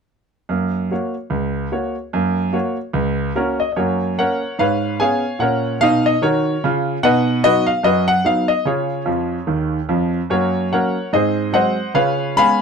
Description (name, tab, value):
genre	jazz, stride piano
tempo	147 BPM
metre	4/4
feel	swing 58% on 8ths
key	F# major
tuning	A4 = 440 Hz
part	clear grand piano	solo	0.5-12.6 s	C#2 to B5	-16 LUFS	equal	none
room	light reverb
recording	close, detailed microphones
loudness	-16 LUFS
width	side -6 dB against mid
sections	0.5-3.8 A section; 3.8-12.6 B section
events	grand piano fill 9.1-10.3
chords	0.5 F#; 4.6 C#7/G#; 5.4 F#/A#; 7.0 B; 8.7 C#; 10.3 F#; 11.1 G#7; 11.9 C#7